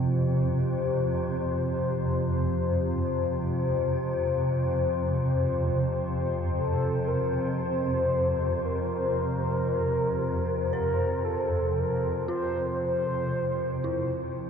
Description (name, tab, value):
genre	dark ambient drone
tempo	57 BPM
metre	4/4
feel	straight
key	unclear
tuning	A4 = 440 Hz
part	deep dark ambient pad	sustained chords	0.0-14.5 s	F3 to C5	-29 LUFS	left 3 dB	chorus, built-in reverb
part	dark detuned synth bell	arpeggios	0.0-14.5 s	E4 to C5	-38 LUFS	left 1 dB	chorus, ping-pong delay
part	swarming drone	drone	0.0-14.5 s	F2 to C3	-28 LUFS	right 1 dB	built-in reverb
part	mellow horn-like synth lead	melody	6.6-14.3 s	A4 to C5	-30 LUFS	right 1 dB	chorus, ping-pong delay
room	wet huge ambient reverb, RT60 9.0 s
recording	cassette tape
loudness	-25 LUFS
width	side -7 dB against mid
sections	0.0-14.5 A section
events	fade-in on synth bell 0.0-14.5; fade-out 12.1-14.5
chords	0.0 F5